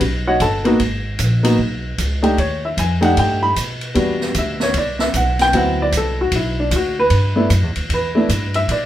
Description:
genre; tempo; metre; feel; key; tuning
jazz piano trio; 152 BPM; 4/4; swing 64% on 8ths; E minor from 4.0 s; A4 = 440 Hz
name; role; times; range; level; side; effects
upright bass; bass; 0.0-8.9 s; G1 to B2; -20 LUFS; equal; none
open jazz drum kit; drums; 0.0-8.8 s; hi-hat, kick drum, ride cymbal, snare drum; -24 LUFS; right 1 dB; none
warm baby grand piano; melody; 0.3-8.9 s; F#3 to B5; -17 LUFS; equal; none
room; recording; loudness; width
moderate studio reverb, RT60 0.7 s; band playing live in one room; -15 LUFS; side -12 dB against mid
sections
0.0-4.0 A section; 4.0-8.9 B section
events
grand piano solo 4.0-8.9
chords
0.0 D#aug; 0.8 G#m; 2.4 B7alt; 4.0 Em9; 5.5 D13; 7.1 G6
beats
0.01 0.41 | 0.80 1.20 1.59 1.99 | 2.38 2.77 3.17 3.56 | 3.95 4.35 4.74 5.13 | 5.53 5.92 6.32 6.71 | 7.10 7.50 7.89 8.29 | 8.68

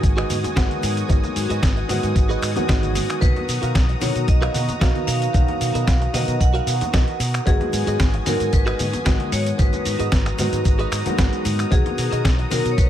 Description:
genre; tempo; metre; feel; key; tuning
nu-disco, nu disco; 113 BPM; 4/4; swing 53% on 16ths; G# dorian; A4 = 439 Hz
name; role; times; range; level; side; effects
clear grand piano; accompaniment; 0.0-12.9 s; D#3 to F#4; -26 LUFS; equal; wide subtle chorus, sidechain pumping, ping-pong delay
lush unison pad; sustained chords; 0.0-12.9 s; F#4 to D#6; -31 LUFS; equal; chorus, phaser, sidechain pumping
direct-recorded clean electric guitar; riff; 0.0-12.8 s; F#4 to F#5; -31 LUFS; right 4 dB; lush chorus, ping-pong delay
fingered electric bass with an envelope filter; bass; 0.0-12.9 s; G#1 to B2; -24 LUFS; equal; none
dusty soul sampler-style drum kit; drums; 0.0-12.9 s; finger snaps, hi-hat, shaker, snare drum; -27 LUFS; equal; none
electronic kick drum; drums; 0.0-12.9 s; none; -18 LUFS; equal; none
tube shaker and congas; percussion; 0.0-12.9 s; none; -32 LUFS; left 3 dB; none
vibraphone with hard mallets; melody; 3.2-12.9 s; G#4 to F#5; -28 LUFS; equal; ping-pong delay
room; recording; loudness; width
light reverb, digital ambience; none; -18 LUFS; side -11 dB against mid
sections
0.0-12.9 A section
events
none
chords
0.0 G#m7; 3.2 Bmaj7; 7.5 G#m7; 11.7 Bmaj7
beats
0.03 0.56 | 1.10 1.63 2.16 2.69 | 3.22 3.75 4.28 4.81 | 5.34 5.88 6.41 6.94 | 7.47 8.00 8.53 9.06 | 9.59 10.12 10.65 11.18 | 11.71 12.25 12.78

